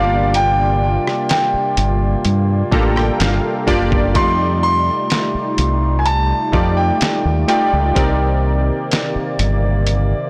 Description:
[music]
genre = contemporary R&B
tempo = 63 BPM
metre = 4/4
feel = straight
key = G minor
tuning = A4 = 444 Hz
[part]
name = warm concert grand piano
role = melody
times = 0.0-9.3 s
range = F5 to C6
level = -22 LUFS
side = equal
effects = digital delay
[part]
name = warm analog keys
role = accompaniment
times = 0.0-10.3 s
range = A3 to Bb5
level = -23 LUFS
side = equal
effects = chorus
[part]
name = mellow woodwind section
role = sustained chords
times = 0.0-10.3 s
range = C3 to D5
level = -28 LUFS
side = equal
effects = none
[part]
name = deep dub fingered electric bass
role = bass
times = 0.0-10.1 s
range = F#1 to G2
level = -20 LUFS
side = equal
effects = none
[part]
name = dusty soul sampler-style drum kit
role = drums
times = 0.3-10.1 s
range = hi-hat, kick drum, rim click, snare drum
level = -22 LUFS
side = equal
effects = none
[sound]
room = light reverb, digital ambience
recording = blown-out, overdriven recording, overdrive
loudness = -16 LUFS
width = mono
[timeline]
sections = 0.0-10.3 A section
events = synth keys fill 2.2-4.2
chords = 0.0 Gm7; 4.2 F13; 8.0 Cm9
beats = | 0.34 1.30 2.25 3.20 | 4.15 5.11 6.06 7.01 | 7.96 8.92 9.87

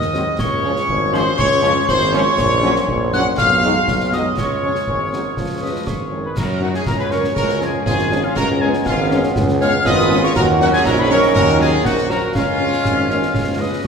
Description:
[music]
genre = military-style march for wind band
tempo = 120 BPM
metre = 2/4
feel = straight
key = unclear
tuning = A4 = 441 Hz
[part]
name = warm trumpet section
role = melody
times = 0.0-13.9 s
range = E#4 to F#5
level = -24 LUFS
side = left 1 dB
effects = none
[part]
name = glockenspiel with rubber mallets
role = second line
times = 0.0-5.8 s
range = C6 to F#6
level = -26 LUFS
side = right 1 dB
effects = none
[part]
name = mellow wooden piccolo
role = second line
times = 0.0-13.9 s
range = E#5 to F#6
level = -23 LUFS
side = left 2 dB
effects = none
[part]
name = warm woodwind section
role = second line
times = 0.0-13.9 s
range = C#4 to F#5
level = -24 LUFS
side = equal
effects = none
[part]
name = clear tuba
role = bass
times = 0.0-13.9 s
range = G#1 to F#2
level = -20 LUFS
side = right 1 dB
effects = none
[part]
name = concert snare drum, clash cymbals and concert bass drum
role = drums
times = 0.0-13.9 s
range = none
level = -25 LUFS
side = equal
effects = none
[part]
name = mellow French horn section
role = accompaniment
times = 0.1-13.7 s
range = F3 to D#4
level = -25 LUFS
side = left 3 dB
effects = none
[part]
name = warm trombone section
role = sustained chords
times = 0.1-13.9 s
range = D#3 to Db4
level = -25 LUFS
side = right 2 dB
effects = none
[part]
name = warm euphonium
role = second line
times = 6.9-13.9 s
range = A#3 to F#4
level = -23 LUFS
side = right 1 dB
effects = none
[sound]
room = wet recital hall reverb, RT60 1.6 s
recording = recorded in a church or concert hall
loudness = -14 LUFS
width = side -6 dB against mid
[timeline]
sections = 0.0-6.4 A section; 6.4-13.9 B section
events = none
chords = 0.4 Db; 2.4 F#/A#; 3.4 G#m7/B; 4.4 C#; 6.4 F#5; 7.4 C#; 8.4 C#7; 10.4 D#m7; 12.3 C#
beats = | 0.39 0.89 | 1.38 1.88 | 2.38 2.88 | 3.38 3.88 | 4.38 4.88 | 5.38 5.87 | 6.37 6.87 | 7.37 7.87 | 8.37 8.86 | 9.36 9.86 | 10.36 10.86 | 11.35 11.85 | 12.35 12.85 | 13.35 13.84

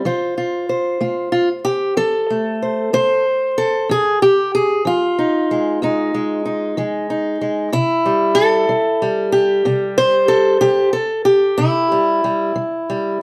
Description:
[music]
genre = acoustic country blues, solo or duo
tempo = 62 BPM (dotted quarters)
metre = 12/8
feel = straight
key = unclear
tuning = A4 = 441 Hz
[part]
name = fingerpicked acoustic archtop guitar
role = solo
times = 0.0-13.2 s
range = F2 to C5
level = -17 LUFS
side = equal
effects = none
[sound]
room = moderate studio reverb, RT60 0.7 s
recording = none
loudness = -17 LUFS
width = mono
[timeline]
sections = 0.0-13.2 A section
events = none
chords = 0.0 F; 3.9 Fm7; 7.7 C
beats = | 0.04 1.01 1.97 2.93 | 3.89 4.85 5.81 6.77 | 7.73 8.69 9.66 10.62 | 11.59 12.56

